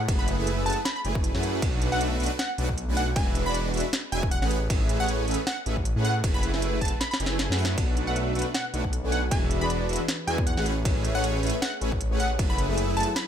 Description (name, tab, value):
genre	future bass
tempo	156 BPM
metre	4/4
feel	swing 56% on 16ths, half-time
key	B dorian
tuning	A4 = 440 Hz
part	wide detuned saw bass	bass	0.0-13.1 s	E1 to A2	-28 LUFS	equal	chorus, sidechain pumping
part	soft supersaw	riff	0.1-13.1 s	G#3 to G#5	-30 LUFS	right 2 dB	sidechain pumping
part	electronic kick drum	drums	0.1-12.5 s	none	-27 LUFS	equal	small room ambience
part	trap drum kit	drums	0.1-13.2 s	hi-hat, ride cymbal, snare drum	-32 LUFS	right 1 dB	small room ambience
part	plucky unison lead	melody	0.2-13.2 s	F#5 to B5	-32 LUFS	equal	sidechain pumping, ping-pong delay
part	soft round pluck	accompaniment	7.8-13.2 s	B2 to E5	-34 LUFS	left 3 dB	wide subtle chorus, sidechain pumping, ping-pong delay
room	light reverb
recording	none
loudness	-23 LUFS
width	side -9 dB against mid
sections	0.0-13.3 A section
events	kick drops out 7.0-7.8; drum fill 7.0-7.8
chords	0.1 F#m11; 1.6 Bm7; 3.2 E9; 4.5 Amaj9; 6.2 F#m11; 7.8 Bm7; 9.3 E9; 10.7 Amaj9; 12.4 F#m11